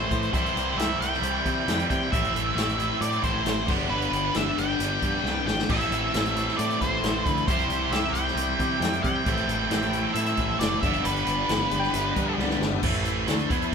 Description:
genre	classic rock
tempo	134 BPM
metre	4/4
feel	straight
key	A minor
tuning	A4 = 440 Hz
part	octave-fuzz lead guitar	melody	0.0-12.3 s	B4 to G5	-28 LUFS	equal	distortion
part	tonewheel organ	sustained chords	0.0-13.7 s	A3 to D5	-38 LUFS	equal	none
part	crunchy overdriven guitar	riff	0.0-13.7 s	G2 to A4	-31 LUFS	left 7 dB	phaser
part	distorted electric guitar	riff	0.0-13.7 s	G2 to A4	-29 LUFS	right 8 dB	overdrive
part	growling fingered electric bass	bass	0.0-13.7 s	F#1 to C3	-31 LUFS	equal	overdrive
part	vintage drum kit	drums	0.1-13.7 s	crash cymbal, hi-hat, kick drum, snare drum, splash cymbal, toms	-29 LUFS	equal	none
part	overdriven electric guitar	riff	5.7-12.6 s	G2 to E4	-34 LUFS	equal	none
part	clean lap steel guitar	second line	11.8-12.6 s	D5 to G5	-34 LUFS	left 4 dB	none
room	moderate large studio reverb, RT60 1.4 s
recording	band playing live in one room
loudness	-22 LUFS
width	side -6 dB against mid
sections	0.0-12.8 A section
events	drum fill 5.2-5.7, 12.4-12.8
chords	0.3 C; 2.1 Am; 3.7 G; 5.7 Am; 7.5 C; 9.3 Am; 10.8 G; 12.8 Am

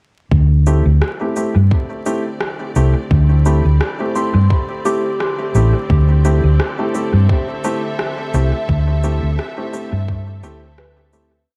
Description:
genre	ambient dub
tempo	86 BPM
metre	4/4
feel	swing 55% on 16ths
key	unclear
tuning	A4 = 440 Hz
part	clear symphonic string section	sustained chords	0.3-11.5 s	D3 to E5	-32 LUFS	equal	vintage 12-bit sampler grit
part	hollow-body short-scale fingered electric bass	bass	0.3-11.4 s	A1 to G2	-15 LUFS	equal	none
part	electronic kick drum	drums	0.3-10.2 s	none	-20 LUFS	equal	overdrive
part	warm upright piano	stabs	0.7-11.3 s	A3 to G4	-25 LUFS	equal	dub echo
part	electronic cabasa and rim click	drums	0.7-11.3 s	none	-29 LUFS	equal	overdrive, dub echo
part	soft synth bell	arpeggios	3.5-11.6 s	G4 to D6	-28 LUFS	equal	chorus, low-pass filter, dub echo
room	little or no reverb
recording	vinyl crackle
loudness	-16 LUFS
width	mono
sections	0.3-11.5 groove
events	fade-in on string section 0.3-11.5; fade-out 7.8-11.5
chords	0.3 D7sus4

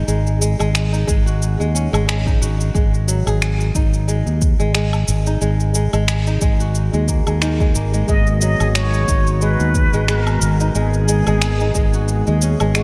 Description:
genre	organic downtempo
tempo	90 BPM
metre	4/4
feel	swing 55% on 16ths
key	G# minor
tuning	A4 = 440 Hz
part	kora	arpeggios	0.0-12.8 s	D#3 to G#4	-26 LUFS	equal	tape echo
part	fretless electric bass	bass	0.0-12.8 s	G#1 to D#2	-20 LUFS	equal	analog chorus, sidechain pumping
part	electronic shaker, woodblock and finger snaps	drums	0.1-12.8 s	none	-27 LUFS	equal	none
part	electronic kick drum	drums	1.1-11.9 s	none	-20 LUFS	equal	none
part	trumpet with plunger mute	melody	8.1-12.8 s	F#4 to D#5	-26 LUFS	equal	tape echo
part	warm analog pad	sustained chords	8.1-12.8 s	D#3 to G#4	-26 LUFS	equal	chorus, sidechain pumping
room	moderate lush hall reverb, RT60 2.8 s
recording	dreamy mix soaked in reverb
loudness	-17 LUFS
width	mono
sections	0.0-12.8 A section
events	none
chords	0.0 G#5; 2.7 F#/G#; 8.1 G#m7

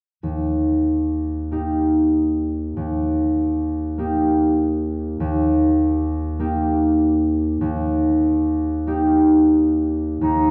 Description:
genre	classical, romantic duo for clarinet and harp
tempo	43-50 BPM (dotted quarters)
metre	6/8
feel	rubato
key	Eb major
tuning	A4 = 440 Hz
part	concert harp	accompaniment	0.2-10.5 s	Eb2 to G4	-20 LUFS	equal	none
part	warm clarinet	melody	10.2-10.5 s	Eb4	-19 LUFS	equal	none
room	wet recital hall reverb, RT60 1.7 s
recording	heard from further back in the room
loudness	-20 LUFS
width	mono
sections	0.2-10.2 A section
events	none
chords	0.2 Eb

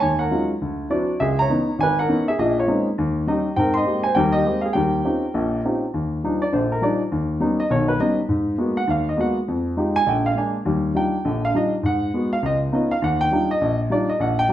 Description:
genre	jazz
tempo	203 BPM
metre	4/4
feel	swing 62% on 8ths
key	Eb major from 5.9 s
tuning	A4 = 435 Hz
part	dark grand piano	solo	0.0-14.5 s	Ab1 to C6	-19 LUFS	equal	none
room	wet large studio reverb, RT60 0.9 s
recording	band playing live in one room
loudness	-19 LUFS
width	side -12 dB against mid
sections	0.0-5.9 A section; 5.9-14.5 B section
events	grand piano solo 5.9-14.5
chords	0.0 Ebm11; 0.6 D9; 1.2 Dbm9; 2.4 Bbm11; 3.0 Eb7; 3.6 Abmaj9; 4.7 Eb13; 5.9 Ebmaj9; 7.1 Ebaug7; 8.3 Abm9; 9.5 Fm9; 10.1 Bb7; 10.7 Ebmaj9; 11.8 Abm7; 12.4 Db9; 13.0 Ebmaj9

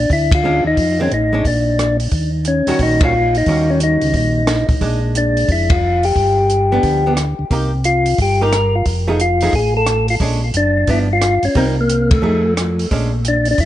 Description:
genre	soul jazz organ trio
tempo	178 BPM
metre	4/4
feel	swing 64% on 8ths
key	Bb mixolydian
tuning	A4 = 441 Hz
part	percussive tonewheel organ	melody	0.0-13.7 s	A3 to Bb4	-16 LUFS	left 2 dB	slow rotary speaker, plate reverb, analog delay
part	tonewheel organ	bass	0.0-13.7 s	F1 to F2	-18 LUFS	equal	chorus vibrato, slow rotary speaker
part	compact cocktail drum kit	drums	0.1-13.7 s	hi-hat, kick drum, ride cymbal, rim click, snare drum	-20 LUFS	equal	vintage 12-bit sampler grit
part	archtop guitar, miked and amplified	accompaniment	0.4-13.1 s	Eb3 to G#4	-21 LUFS	right 3 dB	plate reverb
room	moderate studio reverb, RT60 0.5 s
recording	none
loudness	-13 LUFS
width	side -13 dB against mid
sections	0.0-12.9 A section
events	band accent 0.3, 3.0, 5.7, 12.1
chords	0.0 Bb7#9 (rootless); 0.8 Fm7; 1.4 Bb; 2.1 Eb7#9; 4.8 Bb7; 6.2 G7; 7.5 Cm7; 8.9 F7#9; 10.2 Bb7#9; 10.9 G7; 11.6 Cm7; 12.2 F7#9; 12.9 Bb7#9

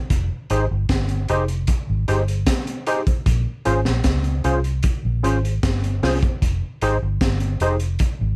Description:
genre	lovers rock reggae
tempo	76 BPM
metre	4/4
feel	straight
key	Bb dorian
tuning	A4 = 440 Hz
part	vintage muted fingered electric bass	bass	0.1-8.4 s	F1 to Db2	-24 LUFS	equal	none
part	crunchy breakbeat drum kit	drums	0.1-8.2 s	hi-hat, kick drum, snare drum	-24 LUFS	equal	gated reverb
part	tine electric piano	accompaniment	0.5-7.7 s	Db4 to C5	-24 LUFS	equal	ensemble chorus
room	little or no reverb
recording	none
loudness	-21 LUFS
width	mono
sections	0.0-8.4 A section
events	none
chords	0.1 Fm9; 3.3 Bbm9; 6.4 Fm9

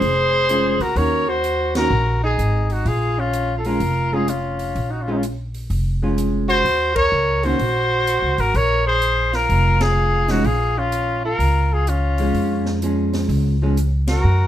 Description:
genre	jazz, small-group swing and bop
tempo	126 BPM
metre	4/4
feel	swing 66% on 8ths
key	Bb minor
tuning	A4 = 441 Hz
part	warm trumpet	melody	0.0-14.5 s	Eb4 to Db5	-20 LUFS	left 1 dB	none
part	warm alto saxophone	second line	0.0-14.5 s	C4 to Bb4	-25 LUFS	right 2 dB	none
part	upright bass	bass	0.0-14.5 s	F1 to Gb2	-21 LUFS	equal	none
part	swinging big-band drum kit	drums	0.0-14.2 s	hi-hat, kick drum, ride cymbal, snare drum	-33 LUFS	equal	none
part	vintage hollow-body jazz guitar	accompaniment	0.5-13.8 s	Eb3 to Gb4	-22 LUFS	right 1 dB	none
room	moderate small room reverb, RT60 0.5 s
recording	none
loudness	-17 LUFS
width	side -11 dB against mid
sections	0.0-14.5 A section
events	band accent 1.7, 6.9, 9.7, 14.0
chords	0.0 Bbm7 (rootless); 1.0 Ebm7; 2.9 Bbm7; 6.7 Ebm7; 8.5 Bbm7

